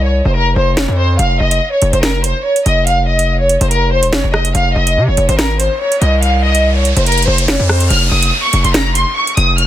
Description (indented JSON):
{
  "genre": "hip hop, drill",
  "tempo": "143 BPM",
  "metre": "4/4",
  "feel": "half-time",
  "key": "unclear",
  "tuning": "A4 = 444 Hz",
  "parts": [
    { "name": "warm studio violin section", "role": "melody", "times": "0.0-9.7 s", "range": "Bb4 to F6", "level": "-15 LUFS", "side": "equal", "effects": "low-pass filter" },
    { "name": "distorted 808-style bass", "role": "bass", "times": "0.0-9.7 s", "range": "Eb1 to C3", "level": "-14 LUFS", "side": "equal", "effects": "distortion" },
    { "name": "drill drum kit", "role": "drums", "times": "0.8-9.7 s", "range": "finger snaps, hi-hat, rim click, snare drum", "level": "-17 LUFS", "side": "right 1 dB", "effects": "none" },
    { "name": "riser and downlifter", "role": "sound effects", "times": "5.6-9.7 s", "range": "none", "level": "-21 LUFS", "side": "equal", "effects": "none" }
  ],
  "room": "little or no reverb",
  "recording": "dense, heavily limited modern master",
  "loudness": "-11 LUFS",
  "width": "side -12 dB against mid",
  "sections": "0.0-7.9 A section; 7.9-9.7 B section",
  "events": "break 0.0-1.2; riser 5.6-7.9",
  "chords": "0.0 F5; 1.2 Dbadd9 (rootless); 4.5 Fm; 7.9 Dbadd9 (rootless)"
}